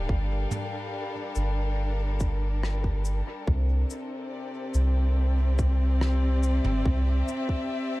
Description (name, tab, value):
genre	ambient dub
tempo	71 BPM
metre	4/4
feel	straight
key	unclear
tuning	A4 = 443 Hz
part	clear studio string section	sustained chords	0.0-8.0 s	C3 to F5	-32 LUFS	left 1 dB	none
part	soft dub sub bass	bass	0.0-7.2 s	G1 to C2	-24 LUFS	equal	none
part	electronic kick drum	drums	0.1-7.7 s	none	-29 LUFS	equal	none
part	soft brush drum kit	drums	0.5-7.5 s	cabasa, rim click, toms	-37 LUFS	equal	dub echo
room	little or no reverb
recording	dark, warm production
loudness	-24 LUFS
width	side -19 dB against mid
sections	0.0-3.5 A section; 3.5-8.0 B section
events	band accent 2.6-3.1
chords	0.0 Gm7; 3.5 Cadd9